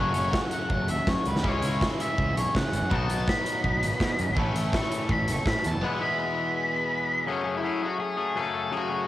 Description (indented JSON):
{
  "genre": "indie rock",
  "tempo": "165 BPM",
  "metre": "4/4",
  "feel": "straight",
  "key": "F# dorian",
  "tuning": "A4 = 437 Hz",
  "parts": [
    { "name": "octave-fuzz lead guitar", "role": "melody", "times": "0.0-9.1 s", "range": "C#4 to C#6", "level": "-29 LUFS", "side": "left 1 dB", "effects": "distortion, cassette tape" },
    { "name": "biting overdriven guitar", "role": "riff", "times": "0.0-7.3 s", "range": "D#3 to A4", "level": "-35 LUFS", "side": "right 7 dB", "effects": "analog chorus" },
    { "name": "twangy electric guitar", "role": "riff", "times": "0.0-9.1 s", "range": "E2 to G#4", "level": "-31 LUFS", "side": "left 5 dB", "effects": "none" },
    { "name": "fuzz picked electric bass", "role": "bass", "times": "0.0-5.8 s", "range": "F#1 to C#3", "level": "-29 LUFS", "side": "right 1 dB", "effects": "overdrive" },
    { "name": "big rock drum kit", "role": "drums", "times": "0.1-5.7 s", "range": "hi-hat, kick drum, snare drum", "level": "-29 LUFS", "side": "right 1 dB", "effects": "none" }
  ],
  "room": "small room ambience",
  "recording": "home recording on cassette",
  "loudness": "-24 LUFS",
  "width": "side -14 dB against mid",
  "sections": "0.0-7.3 A section; 7.3-9.1 B section",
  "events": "lead electric guitar solo 0.0-7.3",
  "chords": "0.0 F#m; 1.4 C#m; 2.9 B; 4.4 A; 5.8 E; 7.3 F#madd9"
}